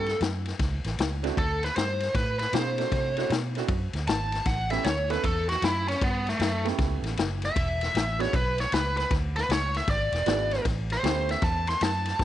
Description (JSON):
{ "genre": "electric blues shuffle", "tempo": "155 BPM", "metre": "4/4", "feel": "swing 64% on 8ths", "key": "A mixolydian", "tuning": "A4 = 442 Hz", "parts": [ { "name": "biting lead guitar", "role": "melody", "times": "0.0-12.2 s", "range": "A3 to C6", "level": "-28 LUFS", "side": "equal", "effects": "overdrive" }, { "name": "bright upright piano", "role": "accompaniment", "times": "0.0-11.6 s", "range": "G#3 to A4", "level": "-32 LUFS", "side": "right 14 dB", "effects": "none" }, { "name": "vintage muted fingered electric bass", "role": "bass", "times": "0.0-12.2 s", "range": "E1 to C3", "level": "-30 LUFS", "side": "right 1 dB", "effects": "none" }, { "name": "vintage drum kit", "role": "drums", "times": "0.1-12.2 s", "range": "kick drum, ride cymbal, snare drum", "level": "-29 LUFS", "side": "left 2 dB", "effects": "none" } ], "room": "light reverb, small room ambience", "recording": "1960s-style stereo, nothing above 10.4 kHz", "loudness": "-24 LUFS", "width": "side -12 dB against mid", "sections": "0.0-12.2 A section", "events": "lead electric guitar solo 0.0-12.2", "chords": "0.0 A; 1.4 D9; 4.5 A9; 7.6 E9; 10.7 A9" }